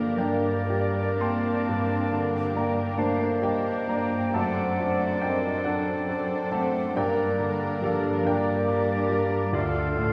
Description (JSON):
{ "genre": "classical, romantic movement for piano and orchestra", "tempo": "38-47 BPM (dotted quarters)", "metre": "12/8", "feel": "rubato", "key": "G minor", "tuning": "A4 = 440 Hz", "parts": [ { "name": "clear grand piano", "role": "melody", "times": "0.0-10.1 s", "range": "D2 to C6", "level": "-30 LUFS", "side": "equal", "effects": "none" }, { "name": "muted studio violin section", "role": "melody", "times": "0.0-10.1 s", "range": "A4 to C5", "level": "-39 LUFS", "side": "equal", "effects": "none" }, { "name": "clear clarinet", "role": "second line", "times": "0.0-10.1 s", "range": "F4 to D5", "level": "-37 LUFS", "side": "equal", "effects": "none" }, { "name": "clear oboe", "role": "second line", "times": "0.0-10.1 s", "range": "D5 to F5", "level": "-39 LUFS", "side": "equal", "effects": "none" }, { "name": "hollow concert flute", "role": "second line", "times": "0.0-10.1 s", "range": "A4 to A5", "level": "-37 LUFS", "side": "equal", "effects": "none" }, { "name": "muted symphonic violin section", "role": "second line", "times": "0.0-10.1 s", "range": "F4 to Bb4", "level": "-40 LUFS", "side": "equal", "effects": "none" }, { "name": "mellow bassoon", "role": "accompaniment", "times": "0.0-10.1 s", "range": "A3 to C4", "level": "-34 LUFS", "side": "equal", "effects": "none" }, { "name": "muted symphonic viola section", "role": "accompaniment", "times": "0.0-10.1 s", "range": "D4", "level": "-42 LUFS", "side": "equal", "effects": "none" }, { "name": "dark French horn section", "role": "sustained chords", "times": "0.0-10.1 s", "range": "A3 to F4", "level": "-37 LUFS", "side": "equal", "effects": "none" }, { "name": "muted symphonic cello section", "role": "bass", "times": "0.0-10.1 s", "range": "D3 to C4", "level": "-37 LUFS", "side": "equal", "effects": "none" }, { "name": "muted symphonic double bass section", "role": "bass", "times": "0.2-10.1 s", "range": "D2 to G2", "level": "-36 LUFS", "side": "equal", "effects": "none" } ], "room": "wet recital hall reverb, RT60 1.4 s", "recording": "none", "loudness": "-26 LUFS", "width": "mono", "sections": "0.0-10.1 A section", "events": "none", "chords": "0.0 Gm; 4.3 D7/F#; 7.0 Gm; 9.5 Dm" }